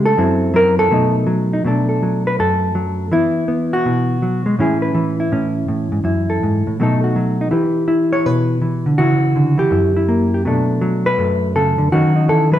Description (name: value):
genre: solo jazz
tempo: 164 BPM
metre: 4/4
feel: swing 66% on 8ths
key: B minor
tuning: A4 = 438 Hz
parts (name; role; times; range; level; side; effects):
- hollow-body jazz guitar; solo; 0.0-12.6 s; F#2 to C#5; -14 LUFS; equal; none
room: moderate large studio reverb, RT60 1.3 s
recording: band playing live in one room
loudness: -14 LUFS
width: side -11 dB against mid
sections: 0.0-1.6 A section; 1.6-12.6 B section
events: hollow-body jazz guitar solo 0.0-1.6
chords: 0.2 F#m7b5; 0.9 B7; 1.6 Bm7; 3.1 Esus2; 4.6 Amaj7; 6.0 F#m9; 6.8 B7; 7.5 Em; 9.0 C#madd11; 9.7 F#7b9; 10.4 Bm7; 11.9 D#m7b5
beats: | 0.16 0.53 0.90 1.26 | 1.63 2.00 2.37 2.73 | 3.10 3.47 3.83 4.20 | 4.57 4.94 5.30 5.67 | 6.04 6.41 6.77 7.14 | 7.51 7.88 8.24 8.61 | 8.98 9.34 9.71 10.08 | 10.44 10.81 11.18 11.54 | 11.91 12.28